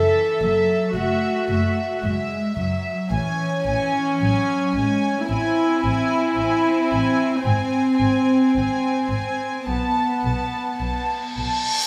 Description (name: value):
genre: cinematic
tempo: 55 BPM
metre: 4/4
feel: straight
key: unclear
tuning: A4 = 440 Hz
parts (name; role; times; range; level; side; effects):
- warm studio violin section; melody; 0.0-11.9 s; E5 to A5; -29 LUFS; equal; none
- warm studio viola section; accompaniment; 0.0-11.4 s; B3 to A4; -24 LUFS; equal; none
- warm studio cello section; bass; 0.0-11.4 s; E3 to B#3; -28 LUFS; equal; none
- dark studio double bass section; bass; 0.4-11.5 s; F#1 to B1; -28 LUFS; equal; none
- reverse cymbal; sound effects; 11.2-11.9 s; none; -28 LUFS; equal; none
room: moderate scoring stage reverb, RT60 1.6 s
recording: close, detailed microphones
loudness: -21 LUFS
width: mono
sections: 0.0-11.9 A section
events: reverse cymbal 11.2-11.9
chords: 0.0 F#m7; 3.1 Amaj7; 7.4 G#; 9.7 Asus2/B